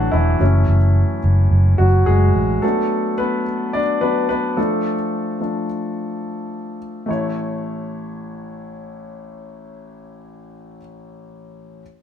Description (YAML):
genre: piano-driven pop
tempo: 108 BPM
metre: 4/4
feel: straight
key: A major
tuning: A4 = 440 Hz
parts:
  - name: warm concert grand piano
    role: accompaniment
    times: 0.0-11.8 s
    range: A1 to D5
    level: -21 LUFS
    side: left 1 dB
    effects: none
  - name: vintage muted fingered electric bass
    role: bass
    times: 0.0-2.6 s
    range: E1 to A1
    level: -14 LUFS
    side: equal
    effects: none
room: moderate studio reverb, RT60 0.9 s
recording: band playing live in one room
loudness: -16 LUFS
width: side -9 dB against mid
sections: 0.0-7.1 A section; 7.1-9.3 B section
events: grand piano solo 0.0-7.1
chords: 0.4 F#m; 2.6 Bm; 4.6 Dm; 7.1 A